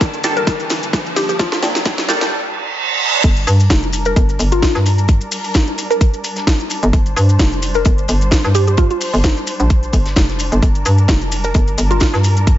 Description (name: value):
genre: bass house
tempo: 130 BPM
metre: 4/4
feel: swing 55% on 16ths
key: G minor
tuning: A4 = 439 Hz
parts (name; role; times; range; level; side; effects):
- clear studio string section; sustained chords; 0.0-12.6 s; G2 to A5; -26 LUFS; equal; vintage 12-bit sampler grit, sidechain pumping, low-pass filter
- electronic kick drum; drums; 0.0-12.6 s; none; -14 LUFS; equal; overdrive
- house drum kit; drums; 0.0-12.6 s; crash cymbal, hi-hat, snare drum; -21 LUFS; equal; overdrive, high-pass filter on snare, high-pass filter on hats, high-pass filter on cymbals, high-pass filter on room
- maracas; percussion; 0.0-12.6 s; none; -27 LUFS; left 4 dB; none
- riser and reverse cymbal; sound effects; 0.0-3.2 s; none; -20 LUFS; right 4 dB; none
- band-passed chord stab; stabs; 0.2-2.2 s; Bb3 to A4; -22 LUFS; right 1 dB; phaser, wide subtle chorus, sidechain pumping, dub echo
- mallet-like synth pluck; melody; 0.4-12.1 s; F4 to Bb4; -20 LUFS; equal; chorus, phaser, dub echo
- hollow knocking FM bass; bass; 3.2-12.6 s; F1 to G2; -15 LUFS; equal; tube saturation, sidechain pumping
- damped 70s drum kit; drums; 3.2-12.6 s; hi-hat, snare drum; -32 LUFS; left 4 dB; none
room: light reverb, small room ambience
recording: high-pass filter, nothing above 7.7 kHz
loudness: -13 LUFS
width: side -13 dB against mid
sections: 0.0-3.2 A section; 3.2-12.6 B section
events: build-up 0.0-3.2; drum fill 0.0-2.3; riser 0.0-2.3; filter sweep 0.0-3.2; reverse cymbal 2.3-3.2; drop 3.2-12.6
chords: 0.0 Gmadd9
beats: 0.01 0.47 0.93 | 1.39 1.86 2.32 2.78 | 3.24 3.70 4.16 4.62 | 5.09 5.55 6.01 6.47 | 6.93 7.39 7.86 8.32 | 8.78 9.24 9.70 10.16 | 10.62 11.09 11.55 12.01 | 12.47